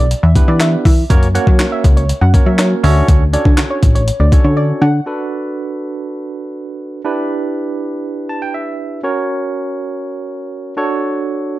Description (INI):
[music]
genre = dance-pop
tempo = 121 BPM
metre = 4/4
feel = straight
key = B minor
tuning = A4 = 441 Hz
[part]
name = soft round pluck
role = melody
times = 0.0-4.9 s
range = C#5 to F#5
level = -22 LUFS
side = equal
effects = chorus, sidechain pumping
[part]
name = barky tine electric piano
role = accompaniment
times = 0.0-11.6 s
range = A#3 to A5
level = -20 LUFS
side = right 3 dB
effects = medium stereo tremolo, sidechain pumping
[part]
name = plucky analog bass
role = bass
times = 0.0-5.0 s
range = A1 to F#3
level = -13 LUFS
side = equal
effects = sidechain pumping
[part]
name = jungle sampler-style drum kit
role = drums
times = 0.1-4.4 s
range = handclaps, hi-hat, kick drum, snare drum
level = -12 LUFS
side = equal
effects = none
[sound]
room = digital ambience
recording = dark, warm production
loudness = -12 LUFS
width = side -17 dB against mid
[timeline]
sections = 0.0-5.1 A section; 5.1-11.6 B section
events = drop 0.0-5.1; break 4.6-5.1; tine electric piano fill 8.0-9.0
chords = 0.0 Em7; 1.1 F#; 2.8 Dmaj7; 5.1 Bm7; 7.1 Em7; 9.0 F#; 10.8 Dmaj7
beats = 0.11 0.60 | 1.10 1.60 2.09 2.59 | 3.08 3.58 4.08 4.57 | 5.07 5.56 6.06 6.55 | 7.05 7.55 8.04 8.54 | 9.03 9.53 10.03 10.52 | 11.02 11.51